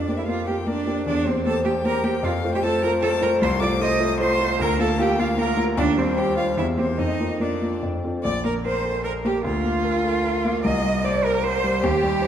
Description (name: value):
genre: quick classical-period movement for piano trio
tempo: 151 BPM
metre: 3/4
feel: rubato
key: F major, Bb major from 3.4 s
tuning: A4 = 440 Hz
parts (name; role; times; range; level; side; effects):
- clear violin; melody; 0.0-12.3 s; F4 to Eb6; -29 LUFS; left 6 dB; none
- clear cello; second line; 0.0-12.3 s; C4 to Eb5; -24 LUFS; right 5 dB; none
- warm concert grand piano; accompaniment; 0.0-12.3 s; Bb1 to F5; -22 LUFS; left 1 dB; none
room: wet concert hall reverb, RT60 2.2 s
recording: dark, warm production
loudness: -20 LUFS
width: side -9 dB against mid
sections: 0.0-8.2 A section; 8.2-12.3 B section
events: none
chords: 0.0 Gm7; 1.1 C7/E; 2.2 F; 3.4 F7/C; 4.6 Bb/D; 5.8 Cm/Eb; 6.6 C7/E; 7.0 Bb/F; 7.8 F; 8.2 Bbmaj13; 9.4 Bb/D; 10.6 Cm